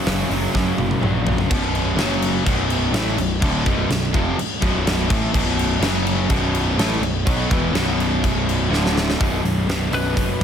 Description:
hard rock; 125 BPM; 4/4; straight; B minor; A4 = 438 Hz
cranked stack guitar; riff; 0.0-10.4 s; B1 to B3; -24 LUFS; equal; overdrive
distorted electric guitar; riff; 0.0-10.4 s; B1 to B3; -24 LUFS; left 1 dB; distortion
fuzz picked electric bass; bass; 0.1-10.4 s; B0 to F#2; -23 LUFS; equal; overdrive
huge arena drum kit; drums; 0.1-10.4 s; crash cymbal, hi-hat, kick drum, snare drum, toms; -22 LUFS; equal
lightly driven lead guitar; melody; 9.9-10.4 s; B4; -28 LUFS; left 4 dB; slapback echo
light reverb, small room ambience; -17 LUFS; side -8 dB against mid
0.0-1.5 A section; 1.5-9.2 B section; 9.2-10.4 C section
drum fill 0.5-1.5, 8.7-9.2
0.0 F#; 1.5 B5; 2.0 F#5; 2.5 Bm; 5.8 F#5; 6.3 B5; 8.7 D5; 9.2 B5

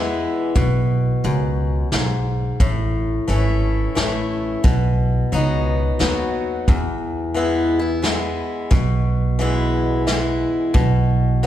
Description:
honky-tonk and classic country; 88 BPM; 3/4; swing 66% on 8ths; E major; A4 = 440 Hz
picked swing-style acoustic guitar; accompaniment; 0.0-11.5 s; E2 to F#4; -22 LUFS; left 2 dB
upright bass; bass; 0.0-11.5 s; G#1 to E2; -20 LUFS; right 1 dB
vintage brush drum kit; drums; 0.6-11.5 s; hi-hat, kick drum, snare drum; -20 LUFS; equal
moderate concert hall reverb, RT60 2.2 s; recorded in a church or concert hall; -17 LUFS; side -12 dB against mid
0.0-11.5 A section
0.0 E; 2.6 A; 4.6 B; 6.7 E; 10.8 N.C.

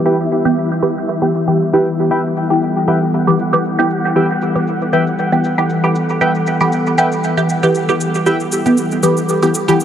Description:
dub techno; 117 BPM; 4/4; swing 54% on 16ths; E minor; A4 = 440 Hz
warbly tape-like pad; sustained chords; 0.0-9.8 s; E3 to A4; -18 LUFS; equal; chorus, built-in reverb
flickering grainy texture; texture; 0.0-9.8 s; E4 to F#5; -25 LUFS; left 2 dB; built-in reverb
warbly lo-fi synth keys; riff; 0.1-8.4 s; B4 to G5; -23 LUFS; equal; chorus, dub echo
filtered dub chord stab; stabs; 0.1-9.8 s; E3 to G4; -15 LUFS; equal; phaser, dub echo
shaker; drums; 0.1-9.8 s; -28 LUFS; equal; overdrive
moderate huge ambient reverb, RT60 5.0 s; low-pass filter; -13 LUFS; side -9 dB against mid
0.0-9.8 A section
filter sweep on ambient pad 0.0-9.8; filter sweep 0.0-9.8
0.0 Em

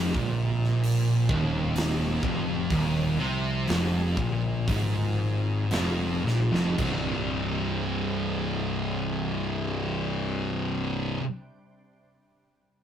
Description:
stoner and doom metal; 55-66 BPM; 4/4; straight; C minor; A4 = 440 Hz
organ-like drone; sustained chords; 0.5-11.2 s; C3 to G4; -42 LUFS; right 1 dB
fuzz guitar; riff; 0.0-11.2 s; C2 to C3; -31 LUFS; equal; distortion
thick fuzz guitar; riff; 0.0-11.2 s; C2 to C3; -30 LUFS; left 4 dB; distortion
thick fuzz guitar; riff; 0.0-11.2 s; C2 to C3; -31 LUFS; right 6 dB; distortion
fuzz fingered electric bass; bass; 0.0-11.1 s; C1 to C2; -34 LUFS; equal; overdrive
big rock drum kit; drums; 0.1-7.0 s; crash cymbal, hi-hat, kick drum, snare drum; -32 LUFS; equal
light reverb; rough rehearsal-room recording; -24 LUFS; side -9 dB against mid
0.0-6.8 A section; 6.8-11.2 B section
slowing down 0.0-6.8; drum fill 6.2-6.8
0.0 F5; 6.8 C5

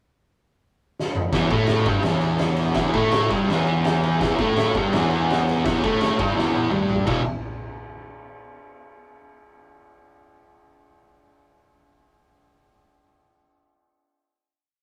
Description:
garage rock duo or trio; 167 BPM; 4/4; straight; A4 = 439 Hz
oversized low-tuned drum kit; drums; 1.0-7.2 s; crash cymbal, kick drum, ride cymbal, snare drum, toms; -28 LUFS; equal
fuzz guitar; riff; 1.3-7.2 s; E2 to A3; -22 LUFS; equal; distortion
wet booth ambience, RT60 0.2 s; rough rehearsal-room recording; -21 LUFS; mono
0.0-1.3 pickup bar; 1.3-7.1 riff; 7.1-8.5 final chord
drum fill 1.0-1.3, 6.4-7.1
0.0 N.C.; 1.3 Emadd11; 7.1 E5

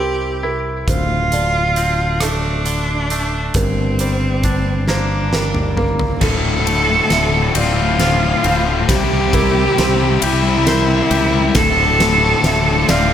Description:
post-rock; 45 BPM (dotted quarters); 6/8; straight; D minor; A4 = 440 Hz
bright cello; melody; 0.0-13.1 s; C4 to A4; -18 LUFS; right 2 dB; digital delay
felt-muted upright piano; arpeggios; 0.0-13.1 s; A4 to F5; -27 LUFS; right 4 dB; digital delay
twangy electric guitar; arpeggios; 0.0-13.1 s; D2 to C5; -24 LUFS; left 1 dB; digital delay
fingered electric bass; bass; 0.0-13.1 s; D1 to C#2; -20 LUFS; equal
huge arena drum kit; drums; 0.9-13.1 s; crash cymbal, hi-hat, kick drum, ride cymbal, rim click, snare drum, toms; -21 LUFS; equal
clear symphonic string section; sustained chords; 6.2-13.1 s; F4 to E6; -30 LUFS; left 2 dB
cranked stack guitar; riff; 6.2-13.1 s; D2 to G3; -19 LUFS; left 9 dB; overdrive
light reverb, studio reverb; -13 LUFS; side -9 dB against mid
0.0-6.2 A section; 6.2-13.1 B section
drum fill 4.9-6.2, 6.2-13.1; build-up 6.2-13.1
0.0 C7; 0.9 Dm7; 3.6 Gm; 6.2 Dm7; 8.9 C7; 11.6 Dm7

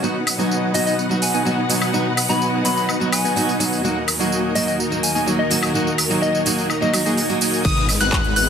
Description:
EDM, festival progressive house; 126 BPM; 4/4; straight; A4 = 440 Hz
fingerpicked steel-string acoustic guitar; accompaniment; 0.0-7.6 s; F#3 to G#4; -23 LUFS; right 2 dB; sidechain pumping, digital delay
dark studio string section; sustained chords; 0.0-8.5 s; D#2 to F#5; -26 LUFS; left 2 dB; sidechain pumping
dense compressed supersaw; riff; 0.0-8.5 s; G#3 to A#5; -24 LUFS; equal; sidechain pumping, low-pass filter, digital delay
big-room dance drum kit; drums; 0.0-8.5 s; crash cymbal, handclaps, hi-hat, tambourine, woodblock; -23 LUFS; right 1 dB
soft struck synth lead; melody; 0.7-7.3 s; D#5 to B5; -26 LUFS; left 2 dB; chorus, digital delay
plucky unison lead; arpeggios; 7.6-8.5 s; D#6 to F#6; -20 LUFS; left 2 dB; sidechain pumping, digital delay
wide detuned saw bass; bass; 7.6-8.5 s; G#1; -24 LUFS; left 1 dB; chorus, sidechain pumping
electronic kick drum; drums; 7.6-8.2 s; -22 LUFS; equal
sub drop; sound effects; 7.6-8.5 s; -29 LUFS; equal
light reverb; -17 LUFS; side -7 dB against mid
0.0-7.6 A section
impact 7.6-8.5
0.0 B; 3.8 D#m; 7.6 G#m

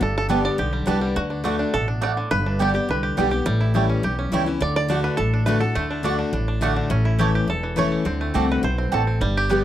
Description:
bluegrass; 209 BPM; 4/4; straight; A4 = 441 Hz
bluegrass banjo; melody; 0.0-9.6 s; D3 to D5; -26 LUFS; right 2 dB
picked steel-string acoustic guitar; accompaniment; 0.0-9.6 s; E2 to G4; -24 LUFS; left 3 dB
upright bass; bass; 0.0-9.6 s; E1 to D2; -24 LUFS; equal
mandolin; stabs; 0.3-9.6 s; A3 to A5; -25 LUFS; right 6 dB
little or no reverb; dry, close 1970s-style studio recording; -19 LUFS; side -12 dB against mid
0.0-1.2 A section; 1.2-9.6 A section
five-string banjo solo 0.0-9.6
0.0 Gadd9; 1.2 D; 2.3 G; 3.5 A7; 4.6 D; 6.9 A; 8.1 D7

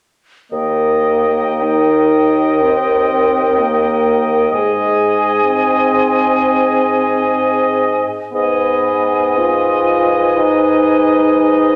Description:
classical, slow romantic movement for wind quintet; free time; Eb major; A4 = 440 Hz
silver concert flute; melody; 0.5-11.8 s; G5 to Ab5; -23 LUFS; equal
warm oboe; second line; 0.5-11.8 s; Eb5; -21 LUFS; equal
clear French horn; accompaniment; 0.5-11.8 s; Ab3 to F4; -20 LUFS; equal
mellow clarinet; accompaniment; 0.5-11.8 s; Ab4 to Cb5; -22 LUFS; equal
dark bassoon; bass; 0.5-11.8 s; Eb2 to Ab2; -20 LUFS; equal
wet recital hall reverb, RT60 1.4 s; -14 LUFS; mono
0.5-11.8 A section
0.5 Eb; 4.5 Ab; 8.4 Abm

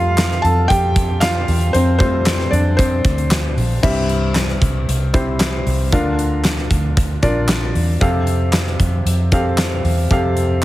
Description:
piano-driven pop; 115 BPM; 4/4; straight; F major; A4 = 440 Hz
felt-muted upright piano; accompaniment; 0.0-10.6 s; G2 to A5; -19 LUFS; left 1 dB
vintage muted fingered electric bass; bass; 0.0-10.6 s; Bb1 to F2; -18 LUFS; equal
huge arena drum kit; drums; 0.2-10.6 s; crash cymbal, handclaps, hi-hat, kick drum, snare drum; -19 LUFS; equal
studio ambience; heavily compressed radio sound; -14 LUFS; side -16 dB against mid
0.0-3.8 A section; 3.8-10.6 B section
felt piano solo 0.0-3.8
0.0 Fadd9; 3.8 C; 5.9 Bb/D; 8.0 Fadd9

